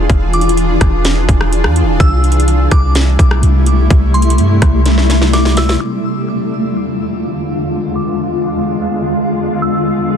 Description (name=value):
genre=hip hop, atmospheric cloud-rap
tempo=126 BPM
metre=4/4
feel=half-time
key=unclear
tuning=A4 = 440 Hz
part: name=shimmering ambient pad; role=sustained chords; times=0.0-10.2 s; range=C2 to G#4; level=-15 LUFS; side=left 1 dB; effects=chorus, built-in reverb, low-pass filter
part: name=clean 808-style bass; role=bass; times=0.0-5.8 s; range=E1 to G2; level=-12 LUFS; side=equal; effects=none
part: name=trap drum kit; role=drums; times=0.1-5.8 s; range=hi-hat, kick drum, rim click, snare drum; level=-14 LUFS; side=equal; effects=overdrive, vintage 12-bit sampler grit
part: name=glassy synth bell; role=melody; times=0.3-10.2 s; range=C6 to F6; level=-24 LUFS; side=right 1 dB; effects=chorus, low-pass filter, ping-pong delay
room=digital ambience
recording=dense, heavily limited modern master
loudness=-11 LUFS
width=side -8 dB against mid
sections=0.0-5.8 A section; 5.8-10.2 B section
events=drum fill 4.9-5.8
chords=0.0 E7b9; 2.0 C6; 5.8 E7b9; 9.6 C6